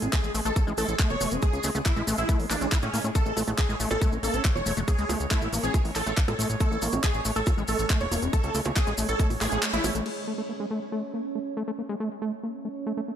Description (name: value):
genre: psychedelic trance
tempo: 139 BPM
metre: 4/4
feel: straight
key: A major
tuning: A4 = 440 Hz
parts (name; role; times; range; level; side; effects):
- bubbling stepped-filter texture; sustained chords; 0.0-13.2 s; G#3 to C#5; -36 LUFS; right 3 dB; chorus, built-in reverb, sidechain pumping
- overdriven acid bass; riff; 0.0-13.1 s; G#3 to E4; -32 LUFS; equal; auto-pan, sidechain pumping, ping-pong delay
- fat analog bass; bass; 0.0-10.0 s; E1 to A2; -30 LUFS; equal; none
- garage drum kit; drums; 0.0-10.1 s; bongos, crash cymbal, handclaps, hi-hat; -32 LUFS; right 1 dB; none
- maracas; percussion; 0.0-10.0 s; none; -36 LUFS; left 3 dB; none
- dense compressed supersaw; melody; 0.1-9.9 s; C#4 to C#5; -31 LUFS; right 1 dB; phaser, sidechain pumping, dub echo
- electronic kick drum; drums; 0.1-9.3 s; none; -25 LUFS; equal; none
- zap; sound effects; 9.4-9.5 s; none; -37 LUFS; equal; none
room: light reverb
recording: none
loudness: -24 LUFS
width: side -9 dB against mid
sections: 0.0-10.1 A section; 10.1-13.2 B section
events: filter sweep on acid bass 0.0-10.1; kick drops out 9.6-10.1; band accent 9.6; filter sweep on synth texture 10.1-13.2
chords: 0.0 A5